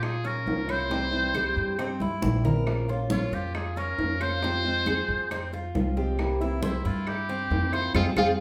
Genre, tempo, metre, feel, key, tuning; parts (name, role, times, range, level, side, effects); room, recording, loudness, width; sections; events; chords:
latin, Cuban son and guajira; 136 BPM; 4/4; straight; A4 = 440 Hz
trumpet with metal mute; melody; 0.0-8.3 s; E4 to C5; -32 LUFS; equal
flamenco guitar; accompaniment; 0.0-8.3 s; C3 to F4; -36 LUFS; equal
Cuban tres; arpeggios; 0.0-8.3 s; C4 to Db5; -34 LUFS; equal
upright bass; bass; 0.0-8.3 s; Bb1 to Bb2; -32 LUFS; equal
bongos; percussion; 0.0-8.3 s; -38 LUFS; equal
claves; percussion; 0.0-8.3 s; -42 LUFS; equal
congas; percussion; 0.0-8.3 s; -35 LUFS; equal
wet large studio reverb, RT60 0.8 s; band playing live in one room; -27 LUFS; mono
0.0-8.4 A section
drum fill 2.0-2.7; band accent 8.0-8.4
0.0 Bbm; 0.9 C; 2.7 Bbm; 4.4 Fm; 6.2 C7